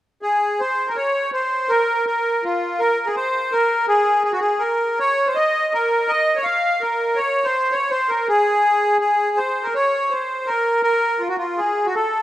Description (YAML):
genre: musette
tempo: 164 BPM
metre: 3/4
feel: straight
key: unclear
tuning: A4 = 440 Hz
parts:
  - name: accordion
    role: solo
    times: 0.2-12.2 s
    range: F4 to F5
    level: -17 LUFS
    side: equal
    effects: light tremolo tuning, slapback echo
room: moderate lush hall reverb, RT60 2.7 s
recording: rough home demo mix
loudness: -17 LUFS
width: side -13 dB against mid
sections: 0.6-12.2 A section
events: none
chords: none